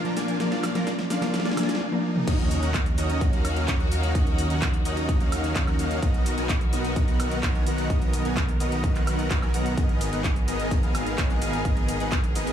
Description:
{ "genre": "EDM, festival progressive house", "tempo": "128 BPM", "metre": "4/4", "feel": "straight", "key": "Eb minor", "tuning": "A4 = 440 Hz", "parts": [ { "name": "mellow electric guitar", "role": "accompaniment", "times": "0.0-2.2 s", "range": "F3 to Bb4", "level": "-30 LUFS", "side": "equal", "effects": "sidechain pumping, tape echo" }, { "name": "rich chamber string section", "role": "sustained chords", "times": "0.0-12.5 s", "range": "Bb2 to Bb4", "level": "-33 LUFS", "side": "left 2 dB", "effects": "sidechain pumping" }, { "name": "dense compressed supersaw", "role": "riff", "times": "0.0-12.5 s", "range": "Bb3 to Bb5", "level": "-29 LUFS", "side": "equal", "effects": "sidechain pumping, tape echo" }, { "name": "big-room dance drum kit", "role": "drums", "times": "0.0-12.5 s", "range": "crash cymbal, handclaps, hi-hat, ride cymbal, shaker, snare drum, toms, woodblock", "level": "-32 LUFS", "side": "equal", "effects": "none" }, { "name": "riser and impact", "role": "sound effects", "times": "0.9-4.2 s", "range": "none", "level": "-35 LUFS", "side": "left 2 dB", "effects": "none" }, { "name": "wide detuned saw bass", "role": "bass", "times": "2.3-12.5 s", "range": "Ab1 to Eb2", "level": "-29 LUFS", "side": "right 1 dB", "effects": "chorus, sidechain pumping" }, { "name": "electronic kick drum", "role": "drums", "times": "2.3-12.2 s", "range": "none", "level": "-24 LUFS", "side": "equal", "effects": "none" } ], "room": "light reverb, digital ambience", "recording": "studio reverb", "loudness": "-22 LUFS", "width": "side -9 dB against mid", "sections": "0.0-2.3 A section; 2.3-12.5 B section", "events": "build-up 0.0-2.3; drum fill 0.0-1.8, 1.8-2.3; drop 2.3-12.5; impact 2.3-4.2", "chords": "0.0 Bb; 2.3 Ebm7; 6.0 Bmaj7; 9.8 Abmadd9" }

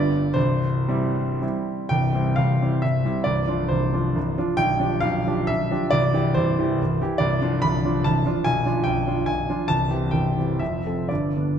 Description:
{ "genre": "classical, romantic triple-time dance for piano with dotted rhythms", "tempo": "107-153 BPM", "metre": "3/4", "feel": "rubato", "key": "C major", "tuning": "A4 = 438 Hz", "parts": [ { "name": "warm concert grand piano", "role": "solo", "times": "0.0-11.6 s", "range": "B0 to B5", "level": "-20 LUFS", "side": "equal", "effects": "none" } ], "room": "wet concert hall reverb, RT60 1.8 s", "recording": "none", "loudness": "-20 LUFS", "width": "side -8 dB against mid", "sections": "0.0-1.9 A section; 1.9-11.6 B section", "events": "none", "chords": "0.4 C; 3.3 Dm7/C; 4.6 G7/B; 5.9 C; 7.2 Dm7/C; 8.5 Bdim7; 9.7 C; 10.6 F" }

